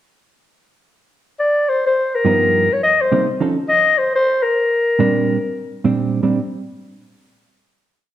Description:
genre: jazz.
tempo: 210 BPM.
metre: 4/4.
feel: swing 62% on 8ths.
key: Bb major.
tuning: A4 = 440 Hz.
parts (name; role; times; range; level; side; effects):
growling clarinet; melody; 1.4-6.0 s; Bb4 to Eb5; -15 LUFS; left 2 dB; none.
hollow-body jazz guitar; accompaniment; 2.2-6.4 s; G2 to A4; -18 LUFS; right 4 dB; none.
room: wet large studio reverb, RT60 1.4 s.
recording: none.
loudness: -14 LUFS.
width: side -12 dB against mid.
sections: 0.5-1.7 pickup bar; 1.7-6.2 A section; 6.2-7.4 final chord.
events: none.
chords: 0.5 N.C.; 2.2 G7alt; 2.8 Cm7; 3.4 Faug7; 4.0 Bb69.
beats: | 0.53 0.82 1.10 1.39 | 1.67 1.96 2.25 2.53 | 2.82 3.10 3.39 3.67 | 3.96 4.24 4.53 4.81 | 5.10 5.38 5.67 5.95 | 6.23.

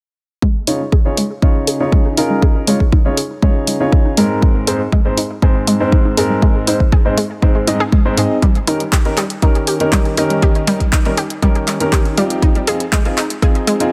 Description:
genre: progressive house.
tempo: 120 BPM.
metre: 4/4.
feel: straight.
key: unclear.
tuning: A4 = 440 Hz.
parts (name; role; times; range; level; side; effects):
analog pluck; arpeggios; 0.4-13.7 s; Ab2 to Ab4; -22 LUFS; equal; chorus, sidechain pumping, digital delay.
electronic kick drum; drums; 0.4-13.5 s; none; -15 LUFS; equal; none.
clear baby grand piano; stabs; 0.7-13.9 s; Ab2 to Eb5; -20 LUFS; equal; sidechain pumping, low-pass filter, digital delay.
pop drum kit; drums; 0.7-13.9 s; handclaps, hi-hat; -23 LUFS; equal; overdrive.
congas; percussion; 1.8-13.9 s; none; -27 LUFS; equal; none.
room: light reverb, digital ambience.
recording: none.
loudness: -15 LUFS.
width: mono.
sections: 0.4-13.9 A section.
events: filter sweep on synth arpeggio sound 0.4-13.9.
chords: 0.4 Dbadd9; 4.4 Ab; 8.4 Eb7; 12.4 Fm7.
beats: | 0.42 0.93 1.43 1.93 | 2.42 2.92 3.42 3.92 | 4.42 4.92 5.42 5.92 | 6.42 6.92 7.42 7.92 | 8.43 8.93 9.43 9.93 | 10.43 10.93 11.43 11.93 | 12.43 12.93 13.43.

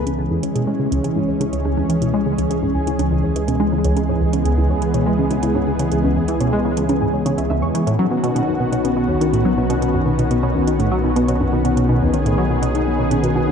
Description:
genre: ambient, sequencer-driven space music.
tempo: 123 BPM.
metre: 4/4.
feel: straight.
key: C# minor.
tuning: A4 = 440 Hz.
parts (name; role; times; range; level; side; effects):
lush unison pad; sustained chords; 0.0-13.5 s; D#3 to G#4; -20 LUFS; equal; chorus.
soft round pluck; arpeggios; 0.0-13.5 s; B3 to C#6; -25 LUFS; moving between left 5 dB and right 1 dB; chorus, auto-pan, tape echo.
tight sequenced synth; riff; 0.0-13.5 s; C#2 to G#3; -20 LUFS; equal; chorus, tape echo.
round analog bass; bass; 0.1-13.5 s; B1 to C#2; -25 LUFS; equal; none.
electronic hi-hat and bongos; percussion; 0.1-13.5 s; none; -31 LUFS; right 5 dB; tape echo.
room: wet scoring stage reverb, RT60 1.9 s, digital ambience.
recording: dark, warm production.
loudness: -16 LUFS.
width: side -7 dB against mid.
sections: 0.1-13.5 A section.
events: none.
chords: 0.1 C#m; 7.9 Badd9.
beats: | 0.06 0.55 1.04 1.53 | 2.02 2.50 2.99 3.48 | 3.97 4.45 4.94 5.43 | 5.92 6.41 6.89 7.38 | 7.87 8.36 8.85 9.33 | 9.82 10.31 10.80 11.28 | 11.77 12.26 12.75 13.23.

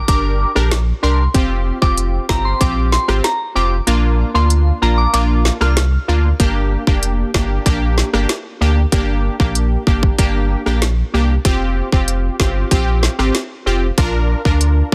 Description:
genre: dancehall.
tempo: 95 BPM.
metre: 4/4.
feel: straight.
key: G minor.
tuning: A4 = 440 Hz.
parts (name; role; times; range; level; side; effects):
soft synth bell; melody; 0.0-5.7 s; Bb5 to F6; -23 LUFS; equal; chorus, digital delay.
synth brass stab; accompaniment; 0.0-14.9 s; Bb3 to Bb4; -22 LUFS; equal; chorus.
warm sub bass; bass; 0.1-14.9 s; F1 to D2; -19 LUFS; equal; none.
island pop drum kit; drums; 0.1-14.9 s; hi-hat, kick drum, rim click, snare drum; -19 LUFS; equal; overdrive.
room: little or no reverb.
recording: dense, heavily limited modern master.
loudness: -16 LUFS.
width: mono.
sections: 0.0-14.9 A section.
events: kick muted 3.9-6.4.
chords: 0.0 Gm; 1.3 Fsus2; 3.9 Bb; 6.4 Gm; 11.5 Fsus2; 14.0 Bb.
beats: 0.08 0.71 | 1.34 1.98 2.61 3.24 | 3.87 4.50 5.13 5.77 | 6.40 7.03 7.66 8.29 | 8.92 9.56 10.19 10.82 | 11.45 12.08 12.71 13.35 | 13.98 14.61.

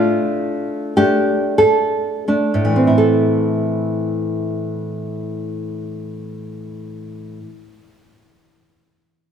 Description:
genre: romantic piece for solo classical guitar.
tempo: 40-56 BPM.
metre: 3/4.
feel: rubato.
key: A minor.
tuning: A4 = 435 Hz.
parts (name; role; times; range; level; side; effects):
nylon-string guitar; solo; 0.0-7.8 s; A2 to A4; -17 LUFS; equal; none.
room: moderate concert hall reverb, RT60 1.9 s.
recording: small room ambience.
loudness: -16 LUFS.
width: side -8 dB against mid.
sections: 0.0-3.0 A section; 3.0-6.9 B section.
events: slowing down 0.0-3.0.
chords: 0.0 Dm/A; 3.0 Am.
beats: 0.41 1.60 | 2.99 4.31 5.60.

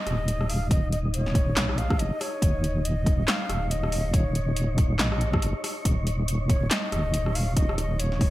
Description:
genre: deep dubstep.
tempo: 140 BPM.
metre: 4/4.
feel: swing 59% on 16ths, half-time.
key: unclear.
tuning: A4 = 438 Hz.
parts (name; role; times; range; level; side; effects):
breathy reedy ney; melody; 0.0-8.3 s; Db5 to F5; -34 LUFS; equal; dub echo.
wind-like tuned noise texture; texture; 0.0-8.3 s; Eb4 to Eb5; -36 LUFS; left 2 dB; built-in reverb.
deep soft wobble bass; bass; 0.1-8.3 s; Eb1 to Bb1; -26 LUFS; equal; chorus.
deep house drum kit; drums; 0.1-8.3 s; handclaps, hi-hat, rim click, snare drum; -29 LUFS; equal; overdrive, gated reverb.
electronic kick drum; drums; 0.7-8.3 s; none; -23 LUFS; equal; overdrive.
room: little or no reverb.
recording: bright 1980s-style digital production.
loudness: -23 LUFS.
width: side -16 dB against mid.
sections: 0.0-8.3 A section.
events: none.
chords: 0.0 Eb5.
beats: 0.28 | 0.71 1.14 1.56 1.99 | 2.42 2.85 3.28 3.71 | 4.14 4.57 4.99 5.42 | 5.85 6.28 6.71 7.14 | 7.57 7.99.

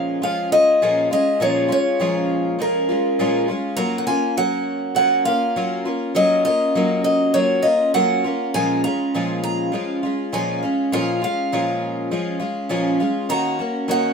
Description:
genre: acoustic folk duo or small band.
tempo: 101 BPM.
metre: 4/4.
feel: straight.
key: unclear.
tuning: A4 = 440 Hz.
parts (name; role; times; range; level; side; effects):
picked acoustic archtop guitar; melody; 0.0-14.1 s; Bb4 to Bb5; -20 LUFS; equal; none.
picked twelve-string acoustic guitar; accompaniment; 0.0-14.1 s; Bb2 to Gb4; -21 LUFS; equal; none.
room: moderate studio reverb, RT60 0.5 s.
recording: minimal, uncompressed stereo recording.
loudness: -18 LUFS.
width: side -6 dB against mid.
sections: 0.0-14.1 A section.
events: none.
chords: 0.0 Bbm7; 3.8 Gbmaj7; 8.5 Bbm7; 13.3 Ebm7.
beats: 0.21 0.81 | 1.40 2.00 2.59 3.19 | 3.78 4.38 4.97 5.57 | 6.17 6.76 7.36 7.95 | 8.55 9.14 9.74 10.33 | 10.93 11.52 12.12 12.71 | 13.31 13.90.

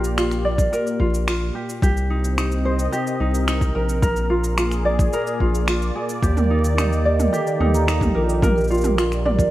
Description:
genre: folktronica.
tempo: 109 BPM.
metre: 4/4.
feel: straight.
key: Bb major.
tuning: A4 = 442 Hz.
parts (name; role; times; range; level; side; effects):
warm analog pad; sustained chords; 0.0-9.5 s; Bb2 to Eb5; -26 LUFS; equal; chorus.
tenor ukulele; arpeggios; 0.0-9.5 s; Eb4 to D5; -24 LUFS; equal; ping-pong delay.
round analog bass; bass; 0.0-9.5 s; Bb1 to Eb2; -22 LUFS; equal; none.
organic electronic drum kit; drums; 0.0-9.5 s; cabasa, finger snaps, toms; -26 LUFS; right 1 dB; overdrive, small room ambience.
electronic kick drum; drums; 0.6-9.5 s; none; -21 LUFS; equal; overdrive, small room ambience.
vibraphone with soft mallets; second line; 6.4-9.5 s; F4 to Bb5; -25 LUFS; right 4 dB; ping-pong delay.
room: light reverb.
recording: vinyl crackle.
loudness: -18 LUFS.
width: side -15 dB against mid.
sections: 0.0-9.5 A section.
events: none.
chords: 0.0 Bb6; 1.8 Cm7; 4.0 Bb7; 6.2 Ebmaj7; 8.4 Bb6.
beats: 0.17 0.72 1.27 | 1.82 2.38 2.92 3.48 | 4.03 4.58 5.13 5.68 | 6.23 6.78 7.33 7.88 | 8.43 8.98.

